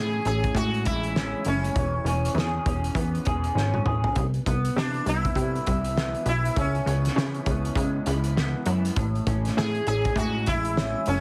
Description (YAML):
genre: indie pop, bedroom pop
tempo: 100 BPM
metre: 4/4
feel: swing 60% on 16ths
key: unclear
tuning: A4 = 440 Hz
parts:
  - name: sitar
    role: melody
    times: 0.0-11.2 s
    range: C#4 to G#4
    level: -31 LUFS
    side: equal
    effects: subtle chorus, slapback echo
  - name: electric guitar through a small old amp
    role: accompaniment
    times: 0.0-11.2 s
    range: A2 to G#4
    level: -33 LUFS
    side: equal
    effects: lush chorus, warbly pitch drift
  - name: plucky analog bass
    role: bass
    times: 0.0-11.2 s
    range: E1 to C#3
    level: -29 LUFS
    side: equal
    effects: none
  - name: loose indie drum kit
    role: drums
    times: 0.3-11.2 s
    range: hi-hat, kick drum, snare drum, toms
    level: -32 LUFS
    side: equal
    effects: none
room: light reverb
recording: heavily compressed radio sound, multiband compression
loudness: -25 LUFS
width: mono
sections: 0.0-11.2 A section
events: drum fill 3.6-4.2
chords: 0.0 Amaj7; 1.8 E6; 4.2 Cmaj7; 6.6 C#m7; 9.0 Amaj7